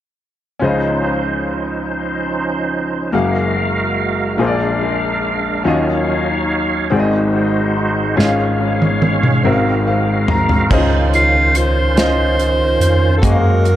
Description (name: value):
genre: slow gospel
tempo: 48 BPM (dotted quarters)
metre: 6/8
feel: straight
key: Db major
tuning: A4 = 440 Hz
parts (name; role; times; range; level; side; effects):
- clear concert grand piano; accompaniment; 0.6-13.8 s; Gb1 to Bb5; -17 LUFS; left 2 dB; dub echo
- bright tonewheel organ; sustained chords; 0.6-13.8 s; Eb3 to F5; -19 LUFS; right 2 dB; slow rotary speaker, chorus vibrato
- modern studio drum kit; drums; 8.2-13.8 s; crash cymbal, hi-hat, kick drum, snare drum, toms; -18 LUFS; equal; none
- mellow tine electric piano; bass; 10.7-13.8 s; Db2 to Gb2; -16 LUFS; equal; medium stereo tremolo
- breathy alto saxophone; melody; 11.1-13.8 s; F4 to C5; -16 LUFS; right 1 dB; dub echo
room: moderate spring reverb, RT60 2.5 s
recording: echo-heavy mix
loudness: -14 LUFS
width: side -12 dB against mid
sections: 0.6-10.7 A section; 10.7-13.8 B section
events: drum fill 8.2-10.7; grand piano fill 9.4-10.7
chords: 0.6 Dbmaj9; 3.1 Gbmaj9; 4.4 Bb7; 5.7 Ebm9; 6.9 Ab7; 8.2 Db/Ab; 9.4 Ab13; 10.7 Dbmaj9; 13.2 Gbmaj9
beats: | 0.61 1.87 | 3.13 4.40 | 5.66 6.92 | 8.18 9.44 | 10.70 11.96 | 13.23